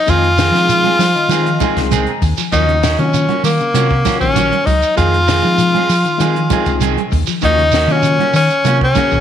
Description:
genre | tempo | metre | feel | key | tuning
afrobeat | 98 BPM | 4/4 | straight | Eb dorian | A4 = 441 Hz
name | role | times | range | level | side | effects
edgy tenor saxophone | melody | 0.0-9.2 s | Bb3 to F4 | -14 LUFS | left 2 dB | none
overdriven tine electric piano | accompaniment | 0.1-9.2 s | Gb3 to Bb5 | -24 LUFS | left 10 dB | fast tremolo
semi-hollow electric guitar | arpeggios | 0.1-9.2 s | C3 to Gb3 | -24 LUFS | left 8 dB | none
clean electric guitar | stabs | 0.1-9.2 s | Eb3 to Ab4 | -22 LUFS | right 9 dB | slapback echo
hollow-body short-scale fingered electric bass | bass | 0.1-9.2 s | Bb1 to F3 | -17 LUFS | right 1 dB | none
compact cocktail drum kit | drums | 0.1-9.2 s | hi-hat, kick drum, snare drum | -23 LUFS | left 2 dB | none
congas | percussion | 0.1-9.1 s | none | -24 LUFS | right 13 dB | none
shekere | percussion | 0.1-9.2 s | none | -24 LUFS | right 8 dB | none
room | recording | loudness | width
moderate echo chamber reverb, RT60 1.3 s, small room ambience | 1960s-style stereo with parts hard left and right | -11 LUFS | side -9 dB against mid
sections
0.0-9.2 A section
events
tine electric piano fill 0.7-2.5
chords
0.1 Fm7; 2.5 Ebm7; 5.0 Fm7; 7.4 Ebm7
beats
| 0.08 0.69 1.30 1.92 | 2.53 3.14 3.75 4.37 | 4.98 5.59 6.21 6.82 | 7.43 8.04 8.66

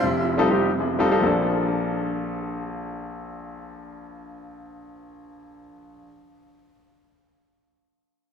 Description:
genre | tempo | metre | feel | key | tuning
gospel | free time | none | none | Bb major | A4 = 440 Hz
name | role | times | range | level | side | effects
clear tenor saxophone | melody | 0.0-0.6 s | F4 | -30 LUFS | right 1 dB | analog delay
warm grand piano | accompaniment | 0.0-6.1 s | F1 to A4 | -23 LUFS | left 1 dB | analog delay
room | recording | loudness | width
moderate plate reverb, RT60 3.6 s | echo-heavy mix | -21 LUFS | side -7 dB against mid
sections
0.0-1.2 A section; 1.2-6.3 B section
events
slowing down 0.0-1.2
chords
0.0 F9; 1.2 Bbmaj7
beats
free time

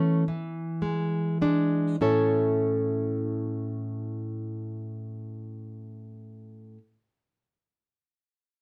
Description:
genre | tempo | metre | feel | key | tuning
romantic piece for solo classical guitar | 36 BPM (dotted quarters) | 6/8 | rubato | A major | A4 = 440 Hz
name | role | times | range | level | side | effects
nylon-string guitar | solo | 0.0-6.8 s | A2 to C#5 | -29 LUFS | equal | none
room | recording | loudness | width
wet studio reverb, RT60 0.6 s | band playing live in one room | -28 LUFS | mono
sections
0.0-2.0 A section; 2.0-5.3 B section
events
slowing down 0.0-2.0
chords
0.3 E7; 2.0 A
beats
0.27 | 1.99 3.63

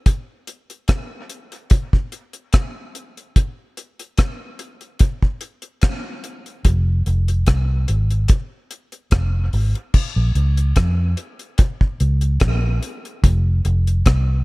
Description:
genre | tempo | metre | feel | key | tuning
dub reggae | 73 BPM | 4/4 | straight | Bb minor | A4 = 440 Hz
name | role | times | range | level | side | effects
deep reggae drum kit | drums | 0.1-14.3 s | crash cymbal, hi-hat, kick drum, rim click | -17 LUFS | equal | none
vintage muted fingered electric bass | bass | 6.7-14.4 s | F1 to F2 | -17 LUFS | equal | none
room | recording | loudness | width
little or no reverb | dark, warm production | -17 LUFS | side -24 dB against mid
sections
0.0-9.9 A section; 9.9-14.4 B section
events
break 0.1-6.6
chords
none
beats
| 0.06 0.89 1.71 2.53 | 3.35 4.18 5.00 5.82 | 6.65 7.47 8.29 9.12 | 9.94 10.76 11.58 12.41 | 13.23 14.05

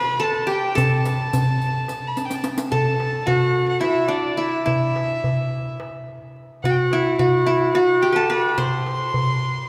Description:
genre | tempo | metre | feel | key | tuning
Turkish makam ensemble | 215 BPM (eighths) | 7/8 | straight | A makam huseyni | A4 = 440 Hz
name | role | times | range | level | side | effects
qanun | melody | 0.0-9.7 s | D4 to C5 | -23 LUFS | equal | none
rich violin | second line | 0.0-9.7 s | D5 to C6 | -29 LUFS | equal | none
darbuka | percussion | 0.2-9.5 s | none | -27 LUFS | equal | none
riq | percussion | 0.5-2.7 s | none | -33 LUFS | equal | none
room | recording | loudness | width
wet church reverb, RT60 3.3 s | recorded in a church or concert hall | -21 LUFS | mono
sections
0.0-2.7 A section; 2.7-9.7 B section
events
drum fill 2.2-2.7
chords
none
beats
0.21 0.49 | 0.77 1.05 1.33 1.61 1.88 2.16 2.44 | 2.72 3.00 3.28 3.56 3.84 4.11 4.39 | 4.67 4.95 5.23 5.51 5.79 6.07 6.35 | 6.62 6.90 7.18 7.46 7.74 8.02 8.30 | 8.58 8.86 9.14 9.42

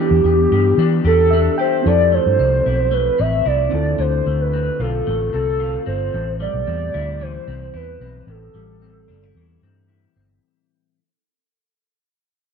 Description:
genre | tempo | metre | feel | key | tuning
indie pop, bedroom pop | 112 BPM | 4/4 | straight | A minor | A4 = 440 Hz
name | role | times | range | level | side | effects
warbly nostalgic lead | melody | 0.0-9.9 s | G4 to E5 | -19 LUFS | right 1 dB | tremolo, wide subtle chorus
electric guitar through a small old amp | accompaniment | 0.0-11.0 s | A2 to G4 | -26 LUFS | left 12 dB | wide subtle chorus, warbly pitch drift
reed electric piano | accompaniment | 0.0-6.2 s | B3 to G5 | -26 LUFS | right 12 dB | cassette tape
vintage muted fingered electric bass | bass | 0.1-10.4 s | G1 to E3 | -20 LUFS | equal | none
room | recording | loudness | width
light reverb, digital ambience | 1960s-style stereo with parts hard left and right | -15 LUFS | side -6 dB against mid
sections
0.0-1.8 A section; 1.8-10.4 B section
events
reed electric piano fill 1.0-1.8; fade-out 1.8-10.4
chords
0.0 Em7; 1.8 Fmaj7; 3.7 Dm7; 6.1 Am7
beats
0.24 0.78 1.31 | 1.85 2.38 2.92 3.46 | 3.99 4.53 5.06 5.60 | 6.13 6.67 7.21 7.74 | 8.28 8.81 9.35 9.89

